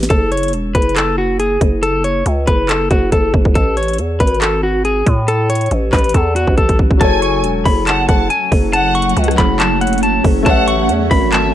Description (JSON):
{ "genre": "hip hop, trap", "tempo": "139 BPM", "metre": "4/4", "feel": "half-time", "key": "F# minor", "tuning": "A4 = 441 Hz", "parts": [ { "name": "growling 808-style bass", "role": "bass", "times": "0.0-11.5 s", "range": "E1 to A2", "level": "-17 LUFS", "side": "equal", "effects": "none" }, { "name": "trap drum kit", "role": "drums", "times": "0.0-11.4 s", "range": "handclaps, hi-hat, kick drum, rim click, snare drum", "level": "-16 LUFS", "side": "equal", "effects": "vintage 12-bit sampler grit" }, { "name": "electric guitar at the edge of break-up", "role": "melody", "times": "0.1-11.5 s", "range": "F#4 to C#6", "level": "-17 LUFS", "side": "left 1 dB", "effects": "low-pass filter" }, { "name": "warm studio violin section", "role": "second line", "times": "7.0-11.5 s", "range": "E5 to A5", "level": "-21 LUFS", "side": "equal", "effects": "ping-pong delay" }, { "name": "warm concert grand piano", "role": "accompaniment", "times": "7.0-11.5 s", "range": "F#3 to E5", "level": "-21 LUFS", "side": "left 4 dB", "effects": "low-pass filter" }, { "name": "granular cloud pad", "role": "sustained chords", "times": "8.1-11.5 s", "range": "E3 to C#4", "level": "-20 LUFS", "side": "right 1 dB", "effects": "built-in reverb" } ], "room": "little or no reverb", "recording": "none", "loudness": "-12 LUFS", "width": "side -12 dB against mid", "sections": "0.0-7.0 A section; 7.0-11.5 B section", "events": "drum fill 6.1-7.0", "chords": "0.1 F#5; 3.6 A5; 7.0 F#m; 10.5 A" }